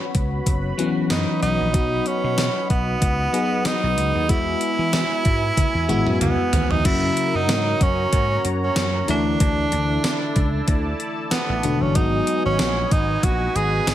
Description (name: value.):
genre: 1980s-style pop.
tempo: 94 BPM.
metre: 4/4.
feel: swing 55% on 16ths.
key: unclear.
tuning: A4 = 440 Hz.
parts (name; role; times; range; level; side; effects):
FM electric piano; accompaniment; 0.0-13.9 s; C#3 to G#4; -26 LUFS; left 4 dB; chorus.
sweeping resonant pad; sustained chords; 0.0-13.9 s; E4 to B5; -30 LUFS; left 1 dB; chorus.
vintage slap bass; bass; 0.1-13.9 s; E1 to E3; -24 LUFS; equal; none.
gated 80s digital drum machine; drums; 0.1-13.9 s; crash cymbal, hi-hat, kick drum, snare drum, tambourine, toms; -22 LUFS; equal; gated reverb, gated reverb snare, overdrive.
clear tenor saxophone; melody; 1.1-13.9 s; B3 to G#4; -23 LUFS; right 3 dB; none.
room: light reverb, digital ambience.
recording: none.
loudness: -18 LUFS.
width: side -12 dB against mid.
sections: 0.0-6.9 A section; 6.9-13.9 B section.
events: drum fill 5.6-6.9.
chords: 0.0 F#sus4; 1.7 B; 4.3 Eadd9; 6.9 F#; 9.1 Dsus2; 12.0 G#m7.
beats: 0.47 1.11 | 1.75 2.38 3.02 3.66 | 4.30 4.94 5.57 6.21 | 6.85 7.49 8.13 8.77 | 9.40 10.04 10.68 11.32 | 11.96 12.60 13.23 13.87.